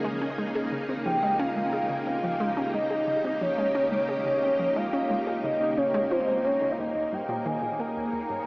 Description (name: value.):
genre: ambient, sequencer-driven space music.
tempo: 89 BPM.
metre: 4/4.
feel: straight.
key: unclear.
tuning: A4 = 441 Hz.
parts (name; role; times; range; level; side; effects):
string machine, full ensemble; sustained chords; 0.0-8.5 s; Db3 to Db5; -31 LUFS; equal; ensemble chorus.
analog pluck; riff; 0.0-8.4 s; Eb2 to Ab4; -32 LUFS; equal; chorus, tape echo.
soft octave-layered synth lead; melody; 1.1-8.5 s; C5 to Bb5; -26 LUFS; equal; chorus, tremolo, tape echo.
room: wet huge ambient reverb, RT60 8.3 s.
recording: in a vast, echoing space, small speaker sound.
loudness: -24 LUFS.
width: side -28 dB against mid.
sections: 0.0-8.5 A section.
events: filter sweep on synth arpeggio sound 0.0-8.5.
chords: 0.0 Db; 6.8 Eb7sus4.